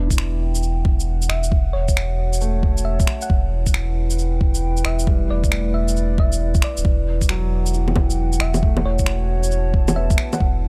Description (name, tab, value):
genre	future garage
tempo	135 BPM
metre	4/4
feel	swing 65% on 16ths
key	E dorian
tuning	A4 = 441 Hz
part	warm upright piano	accompaniment	0.0-10.6 s	E3 to E4	-34 LUFS	equal	sidechain pumping, digital delay
part	warm sub bass	bass	0.0-10.7 s	D1 to E1	-23 LUFS	equal	sidechain pumping
part	dark analog pad	sustained chords	0.1-10.7 s	A3 to A5	-32 LUFS	equal	chorus, sidechain pumping
part	electronic kick drum	drums	0.1-10.5 s	none	-21 LUFS	equal	overdrive, studio reverb
part	electronic shaker, finger snaps and bongos	drums	0.1-10.4 s	none	-27 LUFS	equal	overdrive, studio reverb
part	thumb-piano-like synth pluck	melody	1.3-10.5 s	C#5 to F#5	-33 LUFS	equal	chorus, dub echo
room	little or no reverb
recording	none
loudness	-20 LUFS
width	mono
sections	0.0-10.7 A section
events	none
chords	0.0 Em7; 1.5 F#m7/E; 3.3 Em; 5.1 A7sus4/E; 6.9 Em7; 8.6 F#m7/E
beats	0.19 0.63 1.08 | 1.52 1.97 2.41 2.85 | 3.30 3.74 4.19 4.63 | 5.08 5.52 5.96 6.41 | 6.85 7.30 7.74 8.19 | 8.63 9.08 9.52 9.96 | 10.41